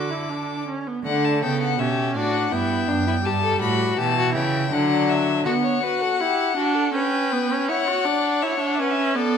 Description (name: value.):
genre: classical, baroque-style fugue for string quartet.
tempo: 81 BPM.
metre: 3/4.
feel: straight.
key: D major, B minor from 5.5 s.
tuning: A4 = 439 Hz.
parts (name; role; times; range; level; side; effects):
rich violin; melody; 0.0-9.4 s; D5 to D6; -25 LUFS; left 9 dB; none.
warm violin; second line; 0.0-9.4 s; D4 to D5; -26 LUFS; left 3 dB; none.
rich viola; accompaniment; 0.0-9.4 s; E3 to F#4; -24 LUFS; right 3 dB; none.
rich cello; bass; 0.0-5.5 s; F#2 to D3; -26 LUFS; right 5 dB; none.
room: moderate scoring stage reverb, RT60 1.9 s.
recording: none.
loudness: -19 LUFS.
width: side -7 dB against mid.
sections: 0.0-1.0 A section; 1.0-5.5 B section; 5.5-9.4 C section.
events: none.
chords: 0.0 D5; 1.0 D; 2.5 Em/G; 3.3 A7/G; 4.7 D; 5.5 Bm; 6.9 G; 7.7 F#5.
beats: 0.28 | 1.04 1.79 2.52 | 3.25 3.98 4.72 | 5.46 6.21 6.95 | 7.69 8.42 9.16.